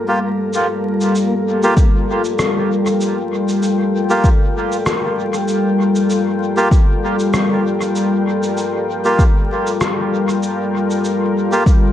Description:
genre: ambient dub.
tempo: 97 BPM.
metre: 4/4.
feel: swing 54% on 16ths.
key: G minor.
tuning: A4 = 442 Hz.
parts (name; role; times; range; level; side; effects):
deep dark ambient pad; sustained chords; 0.0-11.9 s; G3 to A5; -17 LUFS; left 2 dB; chorus, built-in reverb.
backwards swelling texture; texture; 0.0-0.5 s; Bb3; -28 LUFS; left 1 dB; built-in reverb.
melodica; stabs; 0.1-11.6 s; Bb3 to G4; -21 LUFS; right 1 dB; dub echo.
electronic shaker and rim click; drums; 0.5-11.8 s; none; -25 LUFS; equal; dub echo.
electronic kick drum; drums; 1.8-11.8 s; none; -12 LUFS; equal; overdrive.
room: light reverb.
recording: echo-heavy mix, vinyl crackle, nothing above 10.6 kHz.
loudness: -14 LUFS.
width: side -11 dB against mid.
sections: 0.5-11.9 A section.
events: none.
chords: 0.0 Gm7.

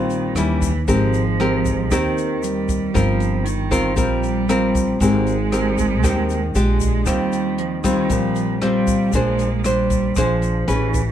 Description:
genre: bossa nova.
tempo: 116 BPM.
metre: 4/4.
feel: straight.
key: Eb major.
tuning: A4 = 440 Hz.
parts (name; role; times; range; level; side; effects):
dark cello; second line; 0.0-11.1 s; Eb3 to Ab3; -23 LUFS; right 6 dB; none.
nylon-string guitar; accompaniment; 0.0-11.0 s; Bb2 to C5; -20 LUFS; left 2 dB; none.
upright bass; bass; 0.0-11.1 s; G1 to Eb2; -22 LUFS; equal; none.
compact cocktail drum kit; drums; 0.1-11.1 s; hi-hat, kick drum, rim click; -26 LUFS; equal; none.
tube shaker; percussion; 0.1-11.1 s; none; -34 LUFS; left 12 dB; none.
room: light reverb.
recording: none.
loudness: -17 LUFS.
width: side -10 dB against mid.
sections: 0.0-11.1 A section.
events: none.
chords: 0.4 Eb7b9; 0.9 Abmaj9; 2.9 Eb69/G; 5.0 Abmaj9; 6.6 Bb6; 7.1 Eb69; 9.1 Bb9.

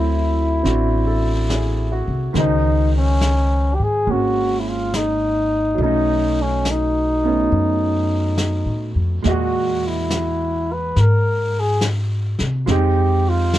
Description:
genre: jazz ballad.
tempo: 70 BPM.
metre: 4/4.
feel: swing 69% on 8ths.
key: unclear.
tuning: A4 = 439 Hz.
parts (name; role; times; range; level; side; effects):
mellow flugelhorn; melody; 0.0-13.6 s; Db4 to B4; -20 LUFS; left 1 dB; none.
clear grand piano; accompaniment; 0.0-13.6 s; A#2 to D#5; -24 LUFS; right 4 dB; none.
upright bass; bass; 0.0-13.6 s; Ab1 to C3; -20 LUFS; equal; none.
vintage brush drum kit; drums; 0.7-13.6 s; brushed snare drum, hi-hat, snare drum; -28 LUFS; left 1 dB; none.
room: light reverb.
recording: dark, warm production.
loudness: -16 LUFS.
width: side -14 dB against mid.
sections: 0.0-13.6 A section.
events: none.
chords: 0.0 D9; 2.4 Dbsus2; 5.8 B7; 9.2 Emaj9#11; 12.7 Fm9.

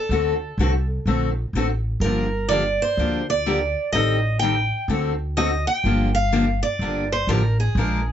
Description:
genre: acoustic string swing (jazz manouche).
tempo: 125 BPM.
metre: 4/4.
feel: swing 65% on 8ths.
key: G minor.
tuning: A4 = 440 Hz.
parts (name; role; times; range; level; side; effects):
picked steel-string acoustic guitar; melody; 0.0-8.1 s; Ab4 to G5; -24 LUFS; right 2 dB; none.
picked steel-string acoustic guitar; accompaniment; 0.1-8.0 s; D3 to Bb4; -23 LUFS; left 3 dB; none.
upright bass; bass; 0.1-8.1 s; G1 to D2; -23 LUFS; equal; none.
room: light reverb.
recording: nothing above 7.7 kHz.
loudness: -19 LUFS.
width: side -10 dB against mid.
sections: 0.0-8.1 A section.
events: none.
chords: 0.1 D7; 2.0 Gm7; 3.9 Am7b5; 4.9 D7; 5.8 Gm7.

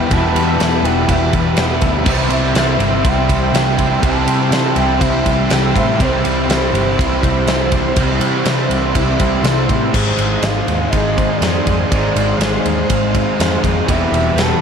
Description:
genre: rock, shoegaze and dream pop.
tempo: 122 BPM.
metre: 4/4.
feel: straight.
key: C major.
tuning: A4 = 440 Hz.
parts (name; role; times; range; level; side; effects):
pure breathy sine lead; melody; 0.0-14.6 s; C5 to A5; -22 LUFS; right 1 dB; chorus, diffuse ambient delay.
analog string pad; sustained chords; 0.0-14.6 s; Eb4 to C6; -24 LUFS; left 1 dB; ensemble chorus.
direct-recorded clean electric guitar; arpeggios; 0.0-14.6 s; G3 to E4; -26 LUFS; left 6 dB; none.
crunchy overdriven guitar; riff; 0.0-14.6 s; E2 to C4; -23 LUFS; right 1 dB; ensemble chorus.
overdriven electric guitar; riff; 0.0-14.6 s; E2 to Ab4; -21 LUFS; right 7 dB; reverse reverb.
thick fuzz guitar; riff; 0.0-14.6 s; E2 to C4; -22 LUFS; left 6 dB; distortion, lush chorus.
vintage muted picked electric bass; bass; 0.0-14.5 s; E1 to C3; -20 LUFS; equal; none.
big rock drum kit; drums; 0.1-14.5 s; crash cymbal, kick drum, ride cymbal, snare drum; -18 LUFS; equal; none.
room: wet cathedral reverb, RT60 6.0 s.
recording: dreamy mix soaked in reverb.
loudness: -13 LUFS.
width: side -7 dB against mid.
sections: 0.0-9.9 A section; 9.9-14.6 B section.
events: none.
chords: 0.0 Em; 2.1 C; 9.9 Ab; 13.9 Em.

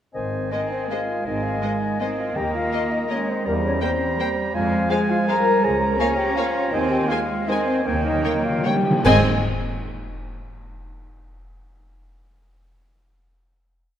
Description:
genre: classical, orchestral ballroom waltz.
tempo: 146-177 BPM.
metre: 3/4.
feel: rubato.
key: Ab major.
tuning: A4 = 440 Hz.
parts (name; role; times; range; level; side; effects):
clear oboe; second line; 0.1-9.2 s; G5 to Bb5; -29 LUFS; right 1 dB; none.
concert flute; second line; 0.1-9.3 s; Bb4 to Bb5; -27 LUFS; left 1 dB; none.
warm clarinet; second line; 0.1-9.2 s; C5 to Eb5; -31 LUFS; equal; none.
mellow bassoon; accompaniment; 0.1-9.2 s; Eb3 to G3; -30 LUFS; right 1 dB; none.
mellow French horn section; sustained chords; 0.1-9.2 s; Bb3 to Bb4; -27 LUFS; left 3 dB; none.
bright symphonic double bass section; bass; 0.2-9.3 s; Ab1 to F2; -28 LUFS; right 2 dB; none.
rich symphonic violin section; melody; 0.5-9.3 s; Eb5 to Ab5; -31 LUFS; left 4 dB; none.
rich symphonic violin section; second line; 0.5-9.3 s; Bb4 to Eb5; -31 LUFS; left 2 dB; none.
rich symphonic viola section; accompaniment; 0.5-9.3 s; Ab3 to C4; -29 LUFS; right 2 dB; none.
rich symphonic cello section; bass; 0.5-9.3 s; Ab2 to Db4; -26 LUFS; right 2 dB; none.
timpani; percussion; 2.4-2.9, 7.9-9.2 s; Ab2 to Eb3; -26 LUFS; equal; none.
cymbal swell, clash cymbals and concert bass drum; percussion; 6.7-9.8 s; none; -32 LUFS; equal; none.
room: wet concert hall reverb, RT60 1.9 s.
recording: none.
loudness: -19 LUFS.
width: side -10 dB against mid.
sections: 0.1-9.0 A section; 9.0-10.2 final chord.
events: slowing down 6.2-9.0; timpani fill 7.9-9.0; band accent 9.0-9.4.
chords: 0.1 Ab; 2.4 Eb5; 3.5 C7/E; 4.5 Fm; 5.6 Bbm7/Db; 6.7 Ab/Eb; 7.9 Eb7; 9.0 Ab.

